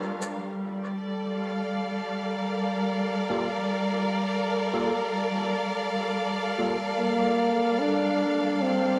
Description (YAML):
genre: ambient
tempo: 73 BPM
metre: 4/4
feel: straight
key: G minor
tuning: A4 = 440 Hz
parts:
  - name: warm symphonic string section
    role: sustained chords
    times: 0.0-9.0 s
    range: G3 to F5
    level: -29 LUFS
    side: equal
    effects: none
  - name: overdriven tine electric piano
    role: stabs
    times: 3.3-6.8 s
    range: Bb3 to A4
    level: -38 LUFS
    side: equal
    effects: subtle chorus, dub echo
  - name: mellow trombone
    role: melody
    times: 7.0-9.0 s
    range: Bb3 to D4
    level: -30 LUFS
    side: equal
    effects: dub echo
room: wet plate reverb, RT60 2.1 s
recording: dreamy mix soaked in reverb, lossy compression artefacts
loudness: -27 LUFS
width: mono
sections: 0.4-9.0 A section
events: none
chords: 0.4 Gm9